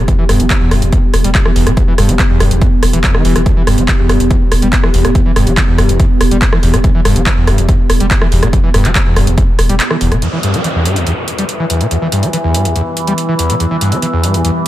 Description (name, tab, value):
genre	driving peak-time techno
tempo	142 BPM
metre	4/4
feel	straight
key	E minor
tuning	A4 = 440 Hz
part	screaming distorted acid line	riff	0.0-14.5 s	E2 to G3	-16 LUFS	equal	distortion, lush chorus, sidechain pumping, digital delay
part	saturated sub bass	bass	0.0-10.2 s	E1	-14 LUFS	equal	overdrive, sidechain pumping, low-pass filter
part	deep dark ambient pad	texture	0.0-14.7 s	B3 to G5	-20 LUFS	equal	chorus, built-in reverb, sidechain pumping
part	electronic kick drum	drums	0.1-9.5 s	none	-13 LUFS	equal	none
part	techno drum kit	drums	0.1-14.7 s	handclaps, hi-hat, rim click	-17 LUFS	equal	none
part	overtone-sweeping drone	drone	11.1-14.7 s	E3	-18 LUFS	left 1 dB	chorus, built-in reverb, phaser, sidechain pumping
part	downlifter	sound effects	10.2-13.6 s	none	-22 LUFS	equal	none
room	light reverb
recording	none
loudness	-10 LUFS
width	side -14 dB against mid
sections	0.0-10.2 A section; 10.2-14.7 B section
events	kick drops out 9.8-10.2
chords	0.0 Em